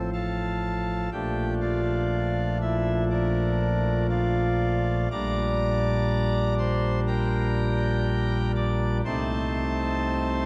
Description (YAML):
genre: classical, chorale-style piece for pipe organ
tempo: 61 BPM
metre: 4/4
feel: straight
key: G minor from 5.1 s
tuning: A4 = 440 Hz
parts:
  - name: pipe organ, cornet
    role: solo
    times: 0.0-10.5 s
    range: A1 to D6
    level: -26 LUFS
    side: equal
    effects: none
room: wet church reverb, RT60 3.6 s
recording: dark, warm production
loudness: -26 LUFS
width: mono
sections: 0.0-10.5 A section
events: none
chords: 0.0 F/A; 1.1 Bbmaj7; 5.1 Gm/Bb; 9.1 Adim/C